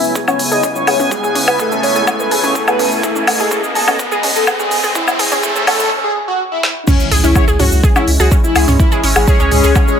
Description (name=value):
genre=melodic techno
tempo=125 BPM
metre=4/4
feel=straight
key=unclear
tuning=A4 = 440 Hz
part: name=wide unison lead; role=melody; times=0.0-10.0 s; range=C#4 to E5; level=-18 LUFS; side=left 1 dB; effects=lush chorus, sidechain pumping, digital delay
part: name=sweeping resonant pad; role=sustained chords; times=0.0-10.0 s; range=C#2 to G#5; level=-21 LUFS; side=equal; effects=chorus, sidechain pumping
part: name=deep house drum kit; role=drums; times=0.0-10.0 s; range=crash cymbal, hi-hat, shaker, snare drum, toms, woodblock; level=-17 LUFS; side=left 1 dB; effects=high-pass filter on perc, small room ambience, high-pass filter on hats, high-pass filter on toms, high-pass filter on snare, high-pass filter on cymbals
part: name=riser and impact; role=sound effects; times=0.0-8.8 s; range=none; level=-22 LUFS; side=equal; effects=none
part: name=wide unison pluck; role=arpeggios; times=0.2-9.8 s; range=C#4 to G#4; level=-21 LUFS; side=right 1 dB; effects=sidechain pumping, tape echo
part: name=electronic kick drum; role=drums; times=0.2-9.9 s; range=none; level=-13 LUFS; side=equal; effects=high-pass filter on kick, small room ambience
part: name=analog synth brass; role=stabs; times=1.6-10.0 s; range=A3 to C#5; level=-21 LUFS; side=left 1 dB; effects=chorus, sidechain pumping, tape echo
part: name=round analog bass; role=bass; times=7.1-9.7 s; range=G#1 to C#2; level=-14 LUFS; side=equal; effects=sidechain pumping
room=light reverb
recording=high-pass filter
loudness=-11 LUFS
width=side -8 dB against mid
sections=0.0-6.9 A section; 6.9-10.0 B section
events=build-up 0.0-6.9; drum fill 0.0-5.9, 6.6; riser 0.0-5.9; filter sweep on synth arpeggio sound 0.0-6.9; filter sweep on analog synth lead 0.0-6.9; filter sweep on analog polysynth 0.0-6.9; break 5.9-6.9; drop 6.9-10.0; impact 6.9-8.8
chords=0.0 Amaj7/C#; 6.9 Amaj7 (rootless)